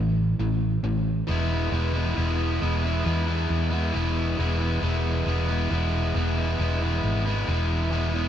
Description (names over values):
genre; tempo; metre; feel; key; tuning
post-rock; 68 BPM; 4/4; straight; E major; A4 = 436 Hz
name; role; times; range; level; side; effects
distorted electric guitar; riff; 0.0-8.3 s; A2 to E4; -26 LUFS; equal; distortion
hollow-body short-scale fingered electric bass; bass; 0.0-8.3 s; E1 to E2; -25 LUFS; equal; none
room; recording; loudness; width
moderate lush hall reverb, RT60 2.4 s; dreamy mix soaked in reverb; -23 LUFS; side -10 dB against mid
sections
0.0-1.3 A section; 1.3-8.3 B section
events
build-up 0.0-1.3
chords
0.0 A5; 1.3 E